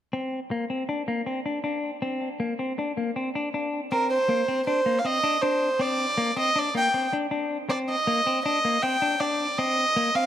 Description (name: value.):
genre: progressive instrumental, progressive.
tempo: 159 BPM.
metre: 5/4.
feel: straight.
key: unclear.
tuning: A4 = 440 Hz.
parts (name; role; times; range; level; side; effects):
clean electric guitar; arpeggios; 0.1-10.3 s; Bb3 to D4; -27 LUFS; left 2 dB; digital delay.
warm violin; melody; 3.9-10.3 s; Bb4 to G5; -23 LUFS; right 2 dB; none.
room: moderate plate reverb, RT60 3.1 s.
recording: dark, warm production.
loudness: -23 LUFS.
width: side -10 dB against mid.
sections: 0.1-3.9 A section; 3.9-10.3 B section.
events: none.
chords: 0.1 Bbadd9.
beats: | 0.13 0.51 0.89 1.27 1.65 | 2.02 2.40 2.78 3.16 3.54 | 3.91 4.29 4.67 5.05 5.42 | 5.80 6.18 6.56 6.94 7.31 | 7.69 8.07 8.45 8.82 9.20 | 9.58 9.96.